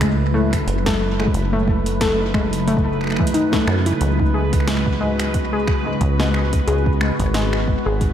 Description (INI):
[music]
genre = IDM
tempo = 90 BPM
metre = 4/4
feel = swing 56% on 16ths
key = unclear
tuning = A4 = 442 Hz
[part]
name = glassy FM pad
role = sustained chords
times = 0.0-8.1 s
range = C#3 to F#4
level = -24 LUFS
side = equal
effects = ensemble chorus, built-in reverb
[part]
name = warbly dusty pluck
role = arpeggios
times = 0.0-8.0 s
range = E3 to A4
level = -22 LUFS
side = left 2 dB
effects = chorus, cassette tape, diffuse ambient delay
[part]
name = deep acid bass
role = bass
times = 0.0-8.1 s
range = F#1 to F#2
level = -22 LUFS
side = equal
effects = none
[part]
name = electro analog drum machine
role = drums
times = 0.0-8.1 s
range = finger snaps, hi-hat, snare drum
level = -27 LUFS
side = equal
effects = overdrive, tape echo
[part]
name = electronic kick drum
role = drums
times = 0.0-8.1 s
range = none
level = -22 LUFS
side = equal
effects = none
[part]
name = bubbling stepped-filter texture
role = texture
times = 0.0-8.1 s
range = B4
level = -30 LUFS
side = right 4 dB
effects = chorus, built-in reverb
[sound]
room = moderate cathedral reverb, RT60 5.8 s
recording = dreamy mix soaked in reverb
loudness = -16 LUFS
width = side -10 dB against mid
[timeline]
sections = 0.0-8.1 A section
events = none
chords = 0.0 F#m7; 4.0 C#7sus4